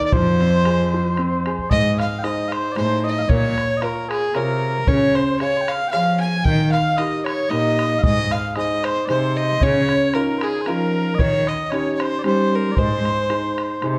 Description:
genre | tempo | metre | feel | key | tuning
celtic folk, Celtic waltz | 114 BPM | 3/4 | swing 53% on 8ths | Ab major | A4 = 440 Hz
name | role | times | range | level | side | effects
rich fiddle | melody | 0.0-13.8 s | Ab4 to Ab5 | -25 LUFS | equal | none
mellow small bagpipes | second line | 0.0-14.0 s | Ab4 to C6 | -29 LUFS | equal | none
clear grand piano | accompaniment | 0.0-14.0 s | Db3 to F5 | -28 LUFS | equal | none
bodhran | percussion | 0.0-14.0 s | none | -26 LUFS | equal | none
rich cello | bass | 0.1-14.0 s | F2 to G3 | -25 LUFS | equal | none
room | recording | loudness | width
moderate recital hall reverb, RT60 1.5 s | dark, warm production | -20 LUFS | mono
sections
0.0-1.7 A section; 1.7-14.0 B section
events
none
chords
0.1 Fm; 1.7 Ab; 3.3 Bbm; 4.9 Db; 6.5 Eb; 8.0 Ab; 9.6 Dbadd9; 11.2 Eb7; 12.8 Ab

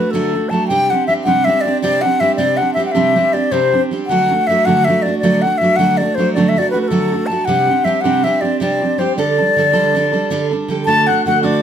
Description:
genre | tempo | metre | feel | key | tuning
celtic folk | 106 BPM (dotted quarters) | 9/8 | straight | D mixolydian | A4 = 442 Hz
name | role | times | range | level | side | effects
bright wooden flute | melody | 0.0-11.6 s | A4 to A5 | -15 LUFS | left 3 dB | none
picked steel-string acoustic guitar | accompaniment | 0.0-11.6 s | C3 to A4 | -16 LUFS | right 4 dB | none
mellow tin whistle | second line | 10.9-11.6 s | D6 to A6 | -17 LUFS | left 4 dB | none
room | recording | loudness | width
moderate studio reverb, RT60 0.6 s | none | -13 LUFS | side -9 dB against mid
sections
0.0-10.9 A section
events
none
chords
0.0 D; 0.7 Csus2; 4.1 D; 7.5 Csus2; 9.2 Dsus4; 10.9 D

